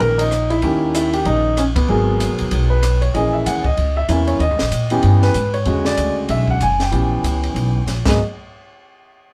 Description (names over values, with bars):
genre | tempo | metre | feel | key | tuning
jazz piano trio | 191 BPM | 4/4 | swing 61% on 8ths | unclear | A4 = 439 Hz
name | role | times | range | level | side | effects
warm upright piano | melody | 0.0-8.2 s | C#3 to G#5 | -21 LUFS | equal | none
upright bass | bass | 0.0-8.2 s | F#1 to A#2 | -21 LUFS | equal | none
compact cocktail drum kit | drums | 0.0-8.1 s | crash cymbal, hi-hat, kick drum, ride cymbal, rim click, snare drum | -28 LUFS | equal | none
room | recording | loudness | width
light reverb | band playing live in one room | -17 LUFS | mono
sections
0.0-3.1 A section; 3.1-8.2 B section; 8.2-9.3 C section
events
band accent 1.7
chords
0.0 D#7; 1.9 G#m9; 3.1 A#m7b5; 4.4 D#7b9b13; 5.7 E13; 6.9 Em6; 8.0 G#m9; 8.2 N.C.